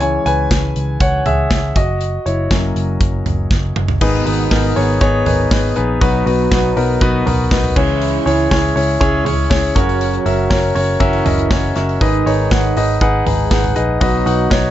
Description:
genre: piano-driven pop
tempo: 120 BPM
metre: 4/4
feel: straight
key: G# minor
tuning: A4 = 440 Hz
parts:
  - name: warm concert grand piano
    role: accompaniment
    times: 0.0-14.7 s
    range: G#2 to G#5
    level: -16 LUFS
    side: left 2 dB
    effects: none
  - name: vintage muted picked electric bass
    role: bass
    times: 0.0-14.7 s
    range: F#1 to C#2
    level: -19 LUFS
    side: equal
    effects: none
  - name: modern studio drum kit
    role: drums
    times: 0.0-14.6 s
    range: crash cymbal, hi-hat, kick drum, snare drum, toms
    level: -18 LUFS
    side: equal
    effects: none
  - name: mellow French horn section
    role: second line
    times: 4.0-14.5 s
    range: B2 to G#4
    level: -24 LUFS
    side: right 11 dB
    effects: none
room: light reverb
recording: dark, warm production, nothing above 7.9 kHz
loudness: -13 LUFS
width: side -12 dB against mid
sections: 0.0-4.0 A section; 4.0-14.7 B section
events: grand piano solo 0.0-4.0; drum fill 3.5-4.0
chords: 0.0 C#m; 1.8 F#; 4.0 G#m; 6.0 B; 7.8 C#m; 9.8 F#; 12.0 G#m; 14.0 B

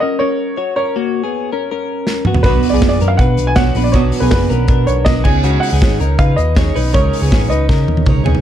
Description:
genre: jangly indie pop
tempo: 160 BPM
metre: 4/4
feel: straight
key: F# major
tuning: A4 = 440 Hz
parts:
  - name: warm upright piano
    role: melody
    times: 0.0-8.0 s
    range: B4 to G#5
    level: -20 LUFS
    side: right 1 dB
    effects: slapback echo, plate reverb
  - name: direct-recorded clean electric guitar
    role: arpeggios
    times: 0.0-8.4 s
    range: A#3 to C#5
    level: -20 LUFS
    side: left 5 dB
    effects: wide subtle chorus, slapback echo, plate reverb
  - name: modern studio drum kit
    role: drums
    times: 2.1-8.4 s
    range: crash cymbal, hi-hat, kick drum, snare drum, toms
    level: -15 LUFS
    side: equal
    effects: none
  - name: picked acoustic archtop guitar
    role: accompaniment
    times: 2.4-8.4 s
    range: B2 to C#5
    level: -20 LUFS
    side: right 7 dB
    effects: plate reverb
  - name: hollow-body short-scale picked electric bass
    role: bass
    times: 2.4-8.4 s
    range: F#1 to C#3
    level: -16 LUFS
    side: equal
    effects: tube saturation
room: light reverb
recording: dark, warm production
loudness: -12 LUFS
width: side -10 dB against mid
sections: 0.0-8.4 A section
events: drum fill 2.1-2.4, 7.7-8.4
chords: 0.0 F#; 2.3 Bm; 5.3 C#sus2

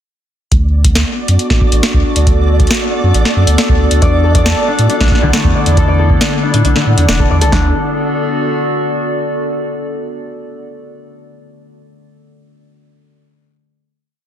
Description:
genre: IDM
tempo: 137 BPM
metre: 4/4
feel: straight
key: D major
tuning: A4 = 439 Hz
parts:
  - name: warbly tape-like pad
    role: sustained chords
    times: 1.1-9.2 s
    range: B3 to D5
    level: -18 LUFS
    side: equal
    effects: chorus, built-in reverb, vintage 12-bit sampler grit
  - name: warm sub bass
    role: bass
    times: 0.5-7.7 s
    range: E1 to A2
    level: -12 LUFS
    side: equal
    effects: none
  - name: electro analog drum machine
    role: drums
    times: 0.5-7.6 s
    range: kick drum, snare drum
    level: -14 LUFS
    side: equal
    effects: none
  - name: electro analog drum machine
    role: drums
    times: 0.5-7.5 s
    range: hi-hat, snare drum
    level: -17 LUFS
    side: equal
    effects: ping-pong delay
  - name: flickering grainy texture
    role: texture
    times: 0.8-7.5 s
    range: D5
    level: -26 LUFS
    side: right 2 dB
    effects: built-in reverb
  - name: concert harp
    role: arpeggios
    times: 4.0-8.7 s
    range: D3 to D5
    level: -18 LUFS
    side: left 3 dB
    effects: digital delay
room: light reverb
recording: dense, heavily limited modern master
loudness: -10 LUFS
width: side -10 dB against mid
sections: 0.5-7.5 groove; 7.5-9.3 final chord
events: none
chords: 0.5 D6; 4.0 E7sus4; 7.5 D6

